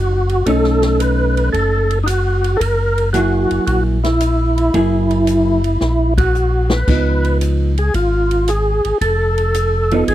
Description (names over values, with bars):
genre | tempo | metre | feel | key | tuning
soul jazz organ trio | 112 BPM | 4/4 | swing 69% on 8ths | F# mixolydian | A4 = 440 Hz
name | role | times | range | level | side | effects
percussive tonewheel organ | melody | 0.0-10.1 s | D#4 to B4 | -18 LUFS | equal | slow rotary speaker, overdrive, chorus vibrato
mellow tonewheel organ | bass | 0.0-10.1 s | E#1 to C#2 | -17 LUFS | equal | overdrive, chorus vibrato, slow rotary speaker
swinging big-band drum kit | drums | 0.3-10.1 s | crash cymbal, hi-hat, kick drum, ride cymbal, snare drum | -24 LUFS | equal | none
vintage hollow-body jazz guitar | accompaniment | 0.5-10.1 s | E#3 to G#4 | -18 LUFS | right 2 dB | none
room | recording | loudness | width
little or no reverb | dry, close 1970s-style studio recording | -13 LUFS | side -13 dB against mid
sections
0.0-10.1 A section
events
drum fill 5.8-6.9; band accent 6.1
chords
0.0 B9; 2.6 F#9; 6.9 C#9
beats
| 0.47 1.00 1.54 2.07 | 2.61 3.14 3.68 4.21 | 4.75 5.28 5.81 6.35 | 6.88 7.42 7.95 8.48 | 9.02 9.55 10.09